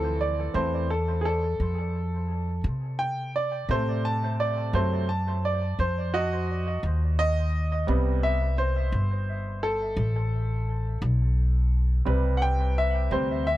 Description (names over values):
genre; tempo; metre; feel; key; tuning
slow blues; 57 BPM (dotted quarters); 12/8; straight; A minor; A4 = 441 Hz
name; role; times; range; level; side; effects
bright upright piano; accompaniment; 0.0-13.6 s; B#2 to A5; -28 LUFS; right 1 dB; dub echo
upright bass; bass; 0.0-13.6 s; G1 to C3; -25 LUFS; equal; none
room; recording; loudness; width
little or no reverb; echo-heavy mix; -24 LUFS; side -15 dB against mid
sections
0.0-13.6 A section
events
upright piano solo 0.0-13.6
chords
0.0 Dm7; 3.7 D#dim7; 7.9 Am7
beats
0.55 1.59 2.64 | 3.69 4.74 5.78 6.83 | 7.87 8.92 9.96 11.01 | 12.05 13.10